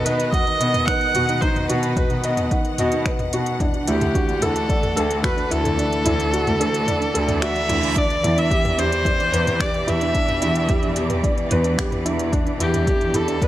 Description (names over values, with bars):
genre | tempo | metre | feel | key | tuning
piano and strings electronica | 110 BPM | 4/4 | straight | E minor | A4 = 440 Hz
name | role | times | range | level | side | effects
rich viola | melody | 0.0-13.5 s | G4 to F#5 | -23 LUFS | right 1 dB | none
clear symphonic string section | sustained chords | 0.0-13.5 s | B2 to F#5 | -29 LUFS | equal | sidechain pumping
felt-muted upright piano | riff | 0.0-13.5 s | D4 to F#5 | -25 LUFS | equal | none
warm chamber cello section | bass | 0.0-13.4 s | D2 to B2 | -25 LUFS | equal | sidechain pumping
soft round pluck | arpeggios | 0.1-13.3 s | D4 to D#5 | -31 LUFS | right 3 dB | chorus, cassette tape, sidechain pumping, tape echo
organic electronic drum kit | drums | 0.1-13.5 s | finger snaps, hi-hat, toms | -28 LUFS | right 1 dB | none
electronic kick drum | drums | 0.3-13.5 s | none | -23 LUFS | equal | none
reverse cymbal | sound effects | 7.4-8.0 s | none | -31 LUFS | right 6 dB | none
room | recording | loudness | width
light reverb, studio reverb | none | -18 LUFS | side -13 dB against mid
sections
0.0-13.5 A section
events
kick drops out 5.8-8.0; reverse cymbal 7.4-8.0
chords
0.0 B; 3.6 Dadd9; 8.0 Em7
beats
0.33 0.88 | 1.42 1.97 2.51 3.06 | 3.60 4.15 4.70 5.24 | 5.79 6.33 6.88 7.42 | 7.97 8.51 9.06 9.60 | 10.15 10.70 11.24 11.79 | 12.33 12.88 13.42